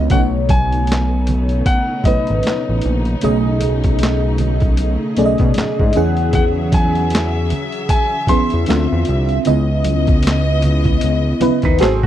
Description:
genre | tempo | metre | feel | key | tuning
R&B, neo-soul | 77 BPM | 4/4 | swing 58% on 16ths | unclear | A4 = 444 Hz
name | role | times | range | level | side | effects
FM electric piano with soft pad layer | accompaniment | 0.0-12.1 s | B2 to F#5 | -19 LUFS | equal | chorus, phaser
warm studio string section | sustained chords | 0.0-12.1 s | B#2 to E5 | -25 LUFS | left 1 dB | none
fat analog bass | bass | 0.0-12.1 s | G#1 to B2 | -17 LUFS | equal | none
clear grand piano | melody | 0.1-9.0 s | D#5 to B#5 | -22 LUFS | left 1 dB | slapback echo
boom bap sampler-style drum kit | drums | 0.1-12.1 s | handclaps, hi-hat, kick drum, snare drum | -17 LUFS | equal | none
congas | percussion | 0.1-12.0 s | none | -27 LUFS | right 3 dB | none
semi-hollow electric guitar | second line | 11.6-12.1 s | B#3 to B4 | -23 LUFS | right 7 dB | none
room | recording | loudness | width
little or no reverb | dry, close 1970s-style studio recording | -14 LUFS | side -11 dB against mid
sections
0.1-12.1 A section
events
none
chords
0.1 B9; 3.2 B13; 5.9 E69; 8.7 Dm9; 9.5 C#m9

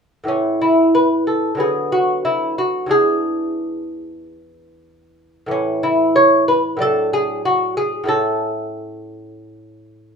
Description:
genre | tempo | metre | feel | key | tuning
classical, baroque-style dance for lute | 93 BPM | 4/4 | rubato | A major | A4 = 438 Hz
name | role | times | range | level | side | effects
lute | solo | 0.2-10.2 s | E2 to C#5 | -16 LUFS | equal | none
room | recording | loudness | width
light reverb | minimal, uncompressed stereo recording | -15 LUFS | side -6 dB against mid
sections
0.3-10.2 A section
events
none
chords
0.3 A5; 1.6 Bm/D; 2.9 E7; 5.5 A5; 6.8 D/A; 8.1 A

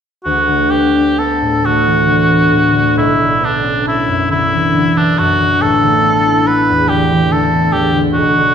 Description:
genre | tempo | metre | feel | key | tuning
classical, impressionist duo for cor anglais and harp | 42-48 BPM (dotted quarters) | 6/8 | rubato | D major | A4 = 439 Hz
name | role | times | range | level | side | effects
clear cor anglais | melody | 0.2-8.5 s | D4 to B4 | -14 LUFS | right 1 dB | none
concert harp | accompaniment | 0.3-8.5 s | A1 to E4 | -13 LUFS | left 1 dB | none
room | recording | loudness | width
wet stone room reverb, RT60 1.2 s | none | -10 LUFS | side -8 dB against mid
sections
0.2-8.5 A section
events
none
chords
0.2 D69; 3.0 Bmadd9; 5.6 Asus24

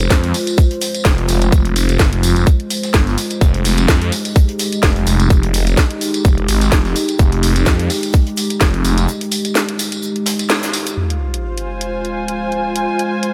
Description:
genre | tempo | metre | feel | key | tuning
bass house | 127 BPM | 4/4 | swing 55% on 16ths | F minor | A4 = 440 Hz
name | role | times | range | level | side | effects
dark analog pad | sustained chords | 0.0-13.3 s | Ab3 to C5 | -24 LUFS | equal | chorus, phaser, sidechain pumping
phased detuned saw bass | bass | 0.0-9.1 s | F1 to F2 | -18 LUFS | equal | phaser, overdrive, sidechain pumping
house drum kit | drums | 0.0-13.3 s | hi-hat, snare drum | -22 LUFS | equal | none
tambourine | percussion | 0.0-11.0 s | none | -29 LUFS | equal | none
electronic kick drum | drums | 0.1-8.7 s | none | -14 LUFS | equal | none
soft brush drum kit | drums | 0.1-11.0 s | hi-hat, shaker, snare drum | -32 LUFS | equal | none
sub drop | sound effects | 11.0-12.9 s | none | -26 LUFS | equal | none
muted studio string section | texture | 11.0-13.3 s | F4 to Ab5 | -24 LUFS | equal | sidechain pumping
room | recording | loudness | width
light reverb, small room ambience | none | -16 LUFS | mono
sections
0.0-11.0 A section; 11.0-13.3 B section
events
break 9.1-11.0; band accent 10.5; impact 11.0-12.9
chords
0.0 Fm

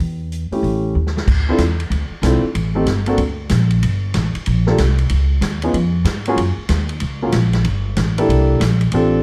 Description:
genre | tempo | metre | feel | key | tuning
jazz, big band swing | 188 BPM | 4/4 | swing 64% on 8ths | unclear | A4 = 435 Hz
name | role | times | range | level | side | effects
upright bass | bass | 0.0-9.2 s | G1 to Ab2 | -19 LUFS | equal | none
swinging big-band drum kit | drums | 0.0-9.0 s | crash cymbal, hi-hat, kick drum, ride cymbal, snare drum | -27 LUFS | equal | none
warm grand piano | accompaniment | 0.5-9.2 s | A3 to A4 | -21 LUFS | equal | none
room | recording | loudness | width
little or no reverb | dark, warm production | -18 LUFS | mono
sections
0.0-1.3 A section; 1.3-9.2 B section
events
drum fill 1.0-1.3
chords
0.0 Emadd11; 0.6 A7; 1.3 Dm9; 2.5 Am7b5; 3.2 Bb; 3.8 Gmadd9; 5.1 Dbadd9; 6.4 Gb; 7.7 Gmadd9; 8.3 C13

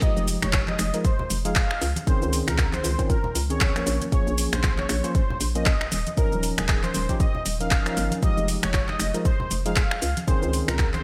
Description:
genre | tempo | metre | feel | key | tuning
deep house | 117 BPM | 4/4 | swing 58% on 16ths | F minor | A4 = 441 Hz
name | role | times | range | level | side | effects
warm velvety synth lead | melody | 0.0-11.0 s | Ab4 to F5 | -33 LUFS | equal | chorus, digital delay
tine electric piano | stabs | 0.0-11.0 s | Eb3 to C5 | -32 LUFS | equal | overdrive, sidechain pumping, delay
deep house drum kit | drums | 0.0-11.0 s | finger snaps, handclaps, hi-hat, shaker | -30 LUFS | equal | studio reverb, gated reverb
electronic kick drum | drums | 0.0-10.9 s | none | -25 LUFS | equal | studio reverb
hollow knocking FM bass | bass | 0.2-11.0 s | Eb1 to Db2 | -30 LUFS | equal | sidechain pumping
congas | percussion | 0.4-11.0 s | none | -38 LUFS | equal | none
room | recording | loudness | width
light reverb, digital ambience | bright 1980s-style digital production | -24 LUFS | mono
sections
0.0-11.0 A section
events
none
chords
0.0 Fm9; 1.8 Dbmaj9; 3.9 Bbm7; 5.9 Eb7sus2; 8.2 Fm9; 10.0 Dbmaj9

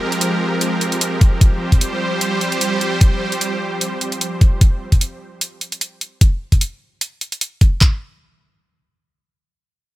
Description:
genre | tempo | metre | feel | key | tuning
heavy wobble dubstep | 150 BPM | 4/4 | swing 55% on 16ths, half-time | unclear | A4 = 440 Hz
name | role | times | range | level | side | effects
supersaw pad | sustained chords | 0.0-4.6 s | F3 to C5 | -20 LUFS | right 1 dB | sidechain pumping
electronic hi-hat | drums | 0.1-7.7 s | none | -21 LUFS | right 1 dB | small room ambience
dubstep drum kit | drums | 1.2-7.9 s | handclaps, kick drum | -12 LUFS | equal | small room ambience
room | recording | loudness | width
little or no reverb | none | -15 LUFS | side -16 dB against mid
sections
0.0-7.8 A section; 7.8-10.0 B section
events
none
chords
0.0 Fmadd9; 1.4 Csus4; 7.8 N.C.

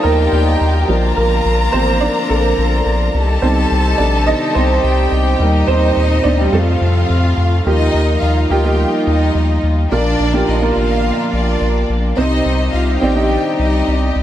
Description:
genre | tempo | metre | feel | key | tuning
pop | 106 BPM | 4/4 | straight | unclear | A4 = 440 Hz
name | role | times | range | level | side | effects
warm upright piano | accompaniment | 0.0-14.2 s | Bb2 to Eb5 | -17 LUFS | right 2 dB | analog chorus
warm studio string section | sustained chords | 0.0-14.2 s | A2 to G4 | -23 LUFS | left 1 dB | none
round analog bass | bass | 0.0-14.2 s | A1 to F2 | -16 LUFS | equal | none
warm studio violin section | second line | 0.1-14.1 s | D4 to Bb5 | -20 LUFS | left 2 dB | diffuse ambient delay
room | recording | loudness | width
moderate lush hall reverb, RT60 2.6 s | dreamy mix soaked in reverb | -12 LUFS | side -12 dB against mid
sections
0.0-7.7 A section; 7.7-14.2 B section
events
upright piano solo 0.0-7.7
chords
0.0 Ebadd9; 0.9 Bb; 3.1 Cm; 5.4 Eb; 6.5 F; 7.7 Ebadd9; 9.9 Bb; 12.2 Cm

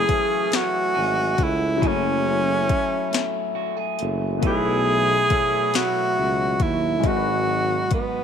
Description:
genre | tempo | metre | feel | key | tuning
slow six-eight R&B | 46 BPM (dotted quarters) | 6/8 | straight | F# dorian | A4 = 440 Hz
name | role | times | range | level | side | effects
clear tenor saxophone | melody | 0.0-8.2 s | B3 to G#4 | -21 LUFS | equal | slapback echo
electric guitar at the edge of break-up | second line | 0.0-8.2 s | G#2 to G#4 | -30 LUFS | right 12 dB | spring reverb
warm grand piano | accompaniment | 0.0-8.2 s | B2 to B4 | -29 LUFS | left 12 dB | none
mellow horn section | stabs | 0.0-6.6 s | B2 to E4 | -30 LUFS | right 13 dB | none
mellow tuba | bass | 0.0-8.0 s | F#1 to D#2 | -26 LUFS | right 1 dB | none
smooth R&B drum kit | drums | 0.1-8.1 s | hi-hat, kick drum, snare drum | -25 LUFS | left 2 dB | overdrive
room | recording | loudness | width
moderate plate reverb, RT60 2.1 s | 1960s-style stereo with parts hard left and right | -19 LUFS | side -8 dB against mid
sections
0.0-8.2 A section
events
none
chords
0.0 F#m9; 4.4 B7sus4; 7.0 G#m7

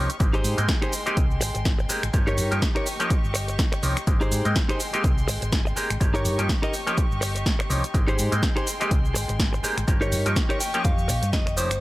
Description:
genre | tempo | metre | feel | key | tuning
filtered disco house | 124 BPM | 4/4 | swing 57% on 16ths | Ab major | A4 = 441 Hz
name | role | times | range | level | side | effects
clav | accompaniment | 0.0-11.7 s | F3 to G5 | -29 LUFS | equal | phaser, sidechain pumping
warm chamber violin section | sustained chords | 0.0-11.8 s | Ab3 to Db6 | -34 LUFS | left 1 dB | sidechain pumping
hollow-body short-scale fingered electric bass | bass | 0.0-11.8 s | F1 to Ab2 | -27 LUFS | equal | sidechain pumping
punchy analog drum machine | drums | 0.1-11.8 s | finger snaps, hi-hat, shaker, snare drum | -30 LUFS | right 1 dB | sidechain pumping on hats, sidechain pumping on cymbals, sidechain pumping on perc
electronic kick drum | drums | 0.2-11.4 s | none | -24 LUFS | equal | none
direct-recorded clean electric guitar | riff | 0.3-11.8 s | Eb4 to G5 | -29 LUFS | equal | sidechain pumping
room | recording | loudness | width
little or no reverb | none | -21 LUFS | side -18 dB against mid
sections
0.0-11.8 A section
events
clean electric guitar fill 10.4-11.8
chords
0.2 Abmaj7; 2.1 Eb7/G; 4.1 Abmaj7; 6.0 Eb7/G; 7.9 Abmaj7; 9.9 Eb7/G

